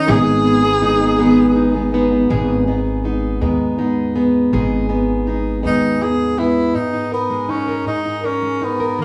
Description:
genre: six-eight pop ballad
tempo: 54 BPM (dotted quarters)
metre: 6/8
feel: straight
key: G# minor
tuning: A4 = 440 Hz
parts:
  - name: bright tenor saxophone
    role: melody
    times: 0.0-1.9, 5.7-9.0 s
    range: A#3 to G#4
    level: -21 LUFS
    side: equal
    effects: none
  - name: fingerpicked plugged-in steel-string acoustic guitar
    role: accompaniment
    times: 0.0-9.0 s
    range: G#2 to A#4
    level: -21 LUFS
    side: equal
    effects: none
  - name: fingerpicked plugged-in steel-string acoustic guitar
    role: arpeggios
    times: 0.0-6.8 s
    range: G#2 to G#4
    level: -21 LUFS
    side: equal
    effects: none
  - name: upright bass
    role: bass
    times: 0.1-6.7 s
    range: G#1 to D#2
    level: -25 LUFS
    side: equal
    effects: none
room: moderate studio reverb, RT60 0.6 s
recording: band playing live in one room, studio reverb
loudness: -17 LUFS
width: mono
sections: 0.0-2.3 A section; 2.3-6.8 B section; 6.8-9.0 C section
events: none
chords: 0.1 G#m; 6.8 G#sus2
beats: | 0.08 1.19 | 2.30 3.41 | 4.53 5.64 | 6.75 7.87 | 8.98

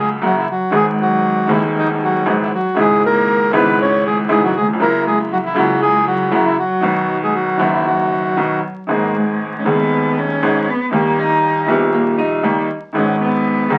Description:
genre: tango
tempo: 118 BPM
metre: 4/4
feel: rubato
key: B major, G# minor from 8.9 s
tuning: A4 = 444 Hz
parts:
  - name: bandoneon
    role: melody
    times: 0.0-8.6 s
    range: D#4 to C#5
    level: -19 LUFS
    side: equal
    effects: none
  - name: dark cello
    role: second line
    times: 0.0-13.8 s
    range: D#3 to D#4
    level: -24 LUFS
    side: equal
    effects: none
  - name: bright upright piano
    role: accompaniment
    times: 0.0-13.8 s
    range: D#1 to G#4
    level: -19 LUFS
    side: equal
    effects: none
  - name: upright bass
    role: bass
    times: 0.0-13.8 s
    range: F#1 to D#2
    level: -38 LUFS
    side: equal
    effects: none
  - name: hollow-body jazz guitar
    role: second line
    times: 11.7-12.8 s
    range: A#3 to D#4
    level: -23 LUFS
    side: equal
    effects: none
room: wet studio ambience, RT60 0.5 s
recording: very old 78 rpm record, vinyl crackle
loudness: -16 LUFS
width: mono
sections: 0.0-8.9 A section; 8.9-13.8 B section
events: cello solo 8.9-13.8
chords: 0.0 F#; 0.7 G#m7; 2.8 C#m7/G#; 4.8 F#7; 6.8 B; 8.9 G#m; 10.9 D#; 13.0 G#m7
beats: 0.22 | 0.73 1.24 1.75 2.26 | 2.77 3.28 3.79 4.30 | 4.80 5.31 5.82 6.32 | 6.83 7.34 7.85 8.37 | 8.89 9.40 9.91 10.42 | 10.93 11.44 11.95 12.45 | 12.96 13.46

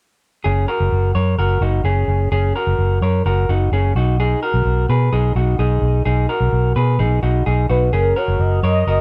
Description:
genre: indie pop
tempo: 128 BPM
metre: 4/4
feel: straight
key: F# major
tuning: A4 = 440 Hz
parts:
  - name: electric guitar through a small old amp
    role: arpeggios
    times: 0.4-9.0 s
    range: C#4 to C#5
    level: -22 LUFS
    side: equal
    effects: tape echo
  - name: vintage muted fingered electric bass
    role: bass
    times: 0.5-9.0 s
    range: F#1 to B2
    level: -19 LUFS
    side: equal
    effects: none
  - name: warm velvety synth lead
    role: melody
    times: 7.7-9.0 s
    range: A#4 to D#5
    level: -22 LUFS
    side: equal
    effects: chorus
room: little or no reverb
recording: dry, close 1970s-style studio recording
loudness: -17 LUFS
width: mono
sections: 0.5-7.9 A section; 7.9-9.0 B section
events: none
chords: 0.5 F#add9; 4.0 B; 7.9 F#add9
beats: | 0.45 0.92 1.39 1.85 | 2.32 2.79 3.26 3.72 | 4.19 4.66 5.12 5.59 | 6.06 6.53 7.00 7.46 | 7.93 8.40 8.87

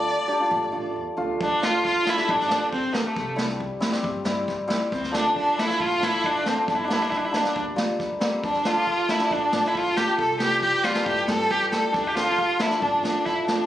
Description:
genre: klezmer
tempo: 137 BPM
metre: 4/4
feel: straight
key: D minor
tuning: A4 = 441 Hz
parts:
  - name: warm violin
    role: melody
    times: 0.0-13.7 s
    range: A3 to D5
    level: -23 LUFS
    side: equal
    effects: slapback echo
  - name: upright bass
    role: bass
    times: 0.0-13.4 s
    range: G1 to G2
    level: -39 LUFS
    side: equal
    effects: none
  - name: hammered dulcimer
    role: accompaniment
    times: 0.3-13.7 s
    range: E3 to G4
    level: -26 LUFS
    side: left 1 dB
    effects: none
  - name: vintage brush drum kit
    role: drums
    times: 1.4-13.6 s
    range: kick drum, snare drum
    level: -30 LUFS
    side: right 1 dB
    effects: none
room: moderate recital hall reverb, RT60 1.5 s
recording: recorded on a phone in the room, studio reverb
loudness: -21 LUFS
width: side -12 dB against mid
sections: 0.0-1.4 A section; 1.4-13.7 A section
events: none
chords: 0.0 Dm; 3.2 C; 4.9 Dm; 6.7 Gm; 8.4 Dm; 10.2 C; 11.9 Dm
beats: 0.08 0.52 0.96 | 1.40 1.84 2.28 2.72 | 3.16 3.60 4.04 4.48 | 4.92 5.36 5.80 6.24 | 6.68 7.12 7.55 7.99 | 8.43 8.87 9.31 9.75 | 10.19 10.63 11.07 11.51 | 11.94 12.38 12.82 13.26

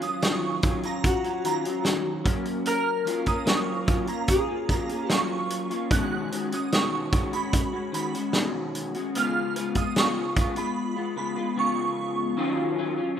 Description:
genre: indie pop, bedroom pop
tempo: 74 BPM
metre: 4/4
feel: straight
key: F# major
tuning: A4 = 440 Hz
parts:
  - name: shimmering bell with halo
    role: second line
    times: 0.0-12.2 s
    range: A#5 to F#6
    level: -31 LUFS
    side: right 6 dB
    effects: ensemble chorus, digital delay
  - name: electric guitar through a small old amp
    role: accompaniment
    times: 0.0-13.2 s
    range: B2 to F#4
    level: -28 LUFS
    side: left 2 dB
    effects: analog chorus, warbly pitch drift
  - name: loose indie drum kit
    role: drums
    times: 0.0-10.7 s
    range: hi-hat, kick drum, snare drum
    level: -26 LUFS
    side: right 1 dB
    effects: none
  - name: clean lap steel guitar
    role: melody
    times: 1.1-5.5 s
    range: F#4 to A#4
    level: -29 LUFS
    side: left 3 dB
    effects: lush chorus, digital delay
room: moderate plate reverb, RT60 2.6 s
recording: rough home demo mix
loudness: -24 LUFS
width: side -9 dB against mid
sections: 0.0-12.4 A section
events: break 10.8-12.4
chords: 0.0 D#m9; 2.3 F#maj7; 5.9 B69; 9.1 C#7; 12.4 D#m9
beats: 0.23 1.04 1.85 | 2.66 3.47 4.28 5.09 | 5.90 6.71 7.52 8.34 | 9.14 9.96 10.77 11.57 | 12.38 13.19

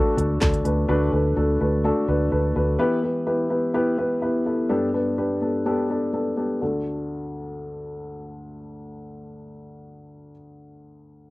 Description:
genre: piano-driven pop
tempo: 126 BPM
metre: 4/4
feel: straight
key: D major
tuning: A4 = 440 Hz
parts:
  - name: dark upright piano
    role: accompaniment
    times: 0.0-11.3 s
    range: D2 to B4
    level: -23 LUFS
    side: left 1 dB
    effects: cassette tape
  - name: vintage muted fingered electric bass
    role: bass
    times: 0.2-2.8 s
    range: D2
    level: -23 LUFS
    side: equal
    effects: none
  - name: house drum kit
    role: drums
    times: 0.2-0.8 s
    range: handclaps, hi-hat, kick drum, snare drum, toms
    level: -23 LUFS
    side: equal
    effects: none
room: moderate booth ambience, RT60 0.2 s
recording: home recording on cassette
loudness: -20 LUFS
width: side -20 dB against mid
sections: 0.0-6.6 A section; 6.6-10.4 B section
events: none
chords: 0.0 D; 2.8 Em; 4.7 Gadd9; 6.6 D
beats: 0.41 | 0.89 1.36 1.84 2.32 | 2.79 3.27 3.75 4.22 | 4.70 5.18 5.65 6.13 | 6.61 7.08 7.56 8.04 | 8.51 8.99 9.47 9.94

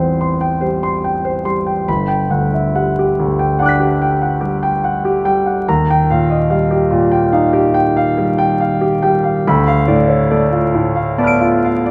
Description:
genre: classical, impressionist solo piano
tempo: 48 BPM (dotted quarters)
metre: 9/8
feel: rubato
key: unclear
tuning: A4 = 438 Hz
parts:
  - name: warm concert grand piano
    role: solo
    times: 0.0-11.9 s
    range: G1 to D7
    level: -15 LUFS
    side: equal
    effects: none
room: moderate concert hall reverb, RT60 2.2 s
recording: vinyl crackle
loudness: -15 LUFS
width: mono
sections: 0.0-11.9 A section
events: none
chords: 0.0 Am9; 1.9 Gmaj7; 5.7 Ebadd9; 9.4 Dm6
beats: 0.62 | 1.88 3.17 4.40 | 5.67 6.91 8.16 | 9.45 10.72

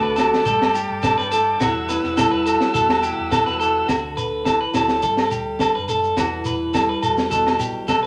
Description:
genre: highlife guitar band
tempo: 105 BPM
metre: 4/4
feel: straight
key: unclear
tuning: A4 = 441 Hz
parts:
  - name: flamenco guitar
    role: accompaniment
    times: 0.0-8.1 s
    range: B2 to B4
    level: -28 LUFS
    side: equal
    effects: none
  - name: combo organ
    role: sustained chords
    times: 0.0-3.9 s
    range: E5 to E6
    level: -32 LUFS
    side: equal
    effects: none
  - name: clean electric guitar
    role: arpeggios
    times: 0.0-8.1 s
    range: F#4 to B4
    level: -22 LUFS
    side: equal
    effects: spring reverb
  - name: hollow-body short-scale fingered electric bass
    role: bass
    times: 0.0-8.1 s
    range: E1 to D2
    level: -37 LUFS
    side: equal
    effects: none
  - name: crunchy breakbeat drum kit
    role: drums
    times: 0.2-8.1 s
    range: kick drum, snare drum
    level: -27 LUFS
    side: equal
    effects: none
  - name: agogo bells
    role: percussion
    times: 0.2-8.0 s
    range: none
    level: -30 LUFS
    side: equal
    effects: none
  - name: shekere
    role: percussion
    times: 0.2-8.0 s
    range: none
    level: -34 LUFS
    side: equal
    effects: none
room: moderate studio reverb, RT60 0.6 s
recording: none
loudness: -20 LUFS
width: mono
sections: 0.0-3.9 A section; 3.9-8.1 B section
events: none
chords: 0.5 Gsus2; 1.6 Emadd9; 3.9 D; 5.0 Gsus2; 6.2 Emadd9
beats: 0.46 1.04 | 1.61 2.18 2.75 3.32 | 3.89 4.46 5.03 5.60 | 6.17 6.75 7.32 7.89

